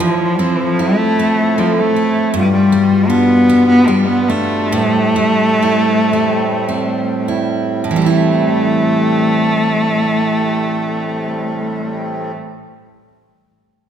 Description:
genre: celtic folk, Celtic slow air.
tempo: 46-80 BPM.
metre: 3/4.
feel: rubato.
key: A minor.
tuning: A4 = 439 Hz.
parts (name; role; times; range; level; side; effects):
rich cello; melody; 0.0-12.3 s; E3 to B3; -14 LUFS; left 1 dB; none.
picked steel-string acoustic guitar; accompaniment; 0.0-12.5 s; G2 to E4; -18 LUFS; right 3 dB; none.
accordion; sustained chords; 0.0-12.3 s; A2 to F4; -23 LUFS; left 1 dB; none.
room: wet concert hall reverb, RT60 1.9 s.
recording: recorded in a church or concert hall.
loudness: -12 LUFS.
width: side -9 dB against mid.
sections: 0.0-7.9 A section; 7.9-11.6 B section.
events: slowing down 2.4-7.9.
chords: 0.0 Fmaj7; 2.4 G7; 4.7 Am7.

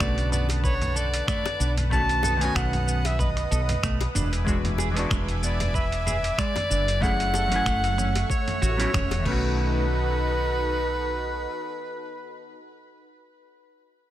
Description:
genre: sunset chillout.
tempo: 94 BPM.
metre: 4/4.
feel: swing 54% on 16ths.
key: unclear.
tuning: A4 = 439 Hz.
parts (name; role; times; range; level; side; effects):
clear soprano saxophone; melody; 0.0-12.6 s; B4 to A5; -28 LUFS; equal; ping-pong delay.
hollow-body jazz guitar; accompaniment; 0.0-12.6 s; C#3 to G#5; -32 LUFS; moving between left 4 dB and right 4 dB; auto-pan, digital delay.
lush unison pad; sustained chords; 0.0-12.6 s; A3 to D#6; -34 LUFS; right 1 dB; chorus.
clean electric guitar; arpeggios; 0.0-9.9 s; G#3 to C#5; -34 LUFS; right 5 dB; digital delay.
woody fretless electric bass; bass; 0.0-11.4 s; E1 to B1; -26 LUFS; equal; none.
dusty soul sampler-style drum kit; drums; 0.0-9.4 s; crash cymbal, finger snaps, hi-hat, shaker, toms; -31 LUFS; equal; overdrive, studio reverb.
electronic kick drum; drums; 0.0-9.4 s; none; -28 LUFS; equal; overdrive, studio reverb.
bongos; percussion; 0.5-9.2 s; none; -36 LUFS; left 9 dB; none.
room: light reverb.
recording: none.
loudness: -22 LUFS.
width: side -13 dB against mid.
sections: 0.0-9.6 A section; 9.6-12.1 B section.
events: none.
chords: 0.0 Bm7; 1.9 B7; 4.2 E7; 7.0 F#m7; 8.3 A6; 9.3 B7.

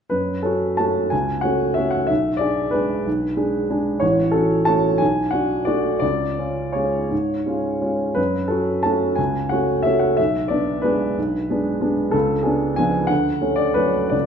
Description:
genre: classical, piano waltz.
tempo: 158-194 BPM.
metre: 3/4.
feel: rubato.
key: F# minor.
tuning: A4 = 440 Hz.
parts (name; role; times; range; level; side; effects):
warm baby grand piano; solo; 0.1-14.3 s; A1 to A5; -18 LUFS; equal; none.
room: wet recital hall reverb, RT60 1.4 s.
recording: dark, warm production.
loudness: -18 LUFS.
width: side -7 dB against mid.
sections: 0.1-14.3 A section.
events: none.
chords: 0.1 F#m; 2.1 G#dim/B; 4.0 F#m/A; 5.0 Bm7; 6.0 C#; 8.2 F#m; 10.2 G#dim/B; 12.1 C#7b9; 13.1 Dmaj7.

